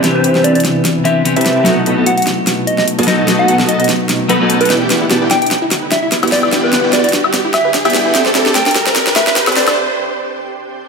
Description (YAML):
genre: future bass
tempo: 148 BPM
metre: 4/4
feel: swing 55% on 16ths, half-time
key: unclear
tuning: A4 = 440 Hz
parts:
  - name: clean electric guitar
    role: accompaniment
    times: 0.0-4.7 s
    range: E3 to B4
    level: -16 LUFS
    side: left 2 dB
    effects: spring reverb, tape echo
  - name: shimmering ambient pad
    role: sustained chords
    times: 0.0-10.9 s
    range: B2 to B4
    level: -24 LUFS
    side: right 2 dB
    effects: chorus, built-in reverb
  - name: dense compressed supersaw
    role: riff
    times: 0.0-9.8 s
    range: B3 to B5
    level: -18 LUFS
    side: right 1 dB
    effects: cassette tape, low-pass filter
  - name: wide detuned saw bass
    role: bass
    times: 0.0-9.8 s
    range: B1 to E2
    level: -25 LUFS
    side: right 1 dB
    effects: none
  - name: pop drum kit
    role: drums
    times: 0.0-9.8 s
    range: hi-hat, snare drum, woodblock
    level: -17 LUFS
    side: equal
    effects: high-pass filter on snare, high-pass filter on hats, high-pass filter on perc
  - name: riser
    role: sound effects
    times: 2.9-9.8 s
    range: none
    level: -21 LUFS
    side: right 1 dB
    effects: none
  - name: soft struck synth lead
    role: melody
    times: 0.1-9.7 s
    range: B4 to G5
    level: -17 LUFS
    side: equal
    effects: chorus, dub echo
  - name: wide unison pluck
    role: arpeggios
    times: 4.9-9.7 s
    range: A3 to C5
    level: -22 LUFS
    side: left 2 dB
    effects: tape echo
room: moderate lush hall reverb, RT60 2.1 s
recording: high-pass filter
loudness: -10 LUFS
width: side -5 dB against mid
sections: 0.0-10.9 A section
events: build-up 0.0-10.9; drum fill 0.0-9.8; filter sweep on supersaw synth 0.0-10.9; filter sweep on ambient pad 0.0-10.9; filter sweep 0.0-10.9; riser 2.9-9.8; break 9.8-10.9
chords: 0.0 Cmaj7; 1.7 B7; 4.7 Em9; 8.1 D7sus4